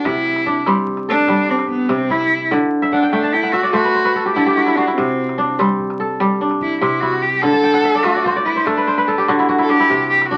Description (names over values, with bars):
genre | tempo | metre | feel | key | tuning
west african traditional, West African string and xylophone music | 98 BPM (dotted quarters) | 12/8 | straight | unclear | A4 = 440 Hz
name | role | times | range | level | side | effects
clear cello | melody | 0.0-10.4 s | B3 to A4 | -20 LUFS | equal | none
kora | arpeggios | 0.0-10.4 s | C3 to A5 | -19 LUFS | equal | none
calabash | percussion | 0.1-10.4 s | none | -37 LUFS | equal | none
room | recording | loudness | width
moderate small room reverb, RT60 0.5 s | very old 78 rpm record, vinyl crackle | -17 LUFS | mono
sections
0.0-10.4 A section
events
cello solo 0.0-10.4; kora fill 2.8-5.0, 7.5-9.9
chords
0.1 C; 2.5 D; 5.0 C; 7.4 D